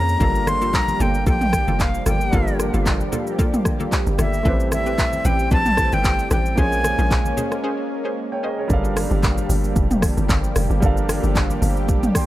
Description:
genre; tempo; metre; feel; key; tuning
amapiano; 113 BPM; 4/4; swing 55% on 16ths; G dorian; A4 = 442 Hz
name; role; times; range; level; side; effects
breathy bright jazz flute; melody; 0.0-7.4 s; E5 to C6; -23 LUFS; left 1 dB; tape echo
warm grand piano; accompaniment; 0.0-12.3 s; G3 to C6; -28 LUFS; right 2 dB; none
lush unison pad; sustained chords; 0.0-12.3 s; F3 to G4; -27 LUFS; equal; chorus
hollow square pluck; stabs; 0.0-8.5 s; Bb3 to C5; -30 LUFS; left 2 dB; chorus, tape echo
deep house drum kit; drums; 0.1-12.3 s; handclaps, hi-hat, kick drum, rim click, shaker, toms; -21 LUFS; equal; none
hollow log drum bass; bass; 0.2-12.1 s; F1 to Bb1; -22 LUFS; equal; none
congas; percussion; 0.5-12.0 s; none; -31 LUFS; left 1 dB; none
room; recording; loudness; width
digital ambience; dry, gritty hardware recording; -17 LUFS; side -15 dB against mid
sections
0.0-8.7 A section; 8.7-12.3 B section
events
break 7.6-8.7; drop 8.7-12.3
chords
0.2 Gm9; 4.5 Am9; 6.6 Bbm9; 8.7 Gm9

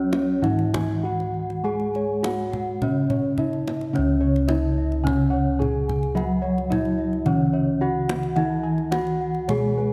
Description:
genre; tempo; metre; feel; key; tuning
Javanese gamelan; 107 BPM; 4/4; uneven beats; C# slendro; A4 = 440 Hz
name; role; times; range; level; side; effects
gamelan-type bronze metallophone; melody; 0.0-9.9 s; C#4 to G#4; -27 LUFS; equal; none
gamelan-type bronze metallophone; accompaniment; 0.0-9.9 s; C#3 to G#3; -30 LUFS; equal; none
gamelan-type bossed gongs; arpeggios; 0.0-9.9 s; B4-25c to G#5; -35 LUFS; equal; none
gamelan-type bronze metallophone; arpeggios; 0.0-9.9 s; C#5 to G#5; -37 LUFS; equal; none
gamelan-type bossed gongs; bass; 0.0-9.9 s; C#2 to G#4; -29 LUFS; equal; none
kendang; percussion; 0.1-9.6 s; none; -35 LUFS; equal; none
room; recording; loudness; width
moderate concert hall reverb, RT60 2.2 s; none; -23 LUFS; mono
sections
0.0-3.9 A section; 3.9-9.9 B section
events
none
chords
none

